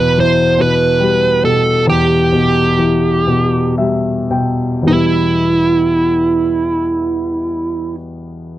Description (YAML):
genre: pop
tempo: 35-49 BPM (dotted quarters)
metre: 6/8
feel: straight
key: E minor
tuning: A4 = 440 Hz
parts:
  - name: dark smooth lead guitar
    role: melody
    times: 0.0-8.0 s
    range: E4 to C5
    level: -14 LUFS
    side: right 3 dB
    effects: overdrive
  - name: warm grand piano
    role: accompaniment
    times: 0.0-8.6 s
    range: E2 to G5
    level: -15 LUFS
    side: left 2 dB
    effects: none
room: little or no reverb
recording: dry, close 1970s-style studio recording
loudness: -12 LUFS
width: side -14 dB against mid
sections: 0.0-4.9 A section; 4.9-8.2 B section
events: slowing down 0.0-4.9; grand piano fill 3.3-4.9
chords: 0.0 Em